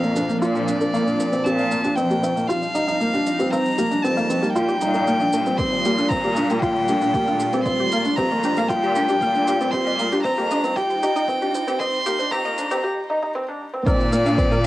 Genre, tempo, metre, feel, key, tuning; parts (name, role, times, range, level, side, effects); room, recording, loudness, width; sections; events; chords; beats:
piano and strings electronica; 116 BPM; 4/4; straight; A4 = 436 Hz
rich violin; melody; 0.0-14.7 s; D5 to C6; -23 LUFS; equal
granular cloud pad; sustained chords; 0.0-14.7 s; Bb2 to F4; -30 LUFS; equal; built-in reverb, sidechain pumping
analog pluck; arpeggios; 0.0-14.7 s; G4 to Bb5; -29 LUFS; left 1 dB; chorus, sidechain pumping, tape echo
felt-muted upright piano; riff; 0.0-14.7 s; Bb3 to G4; -23 LUFS; equal
rich studio cello section; bass; 0.0-14.7 s; F2 to Bb2; -26 LUFS; equal; tube saturation, sidechain pumping, high-pass filter
shaker; drums; 0.0-14.7 s; -40 LUFS; right 3 dB; overdrive, small room ambience, cassette tape
electronic kick drum; drums; 5.6-14.5 s; -26 LUFS; equal; overdrive, small room ambience, cassette tape
moderate studio ambience, RT60 0.5 s; home recording on cassette, high-pass filter; -18 LUFS; side -16 dB against mid
0.0-13.9 A section
build-up 0.0-13.9; filter sweep on synth arpeggio sound 0.0-13.9; break 12.8-13.9
0.0 Bbadd9; 1.5 Ebadd9; 5.6 Gm7/Bb; 9.7 Cm7; 13.9 Bbadd9
0.42 0.94 | 1.46 1.97 2.49 3.01 | 3.52 4.04 4.56 5.08 | 5.59 6.11 6.63 7.14 | 7.66 8.18 8.70 9.21 | 9.73 10.25 10.77 11.28 | 11.80 12.32 12.83 13.35 | 13.87 14.39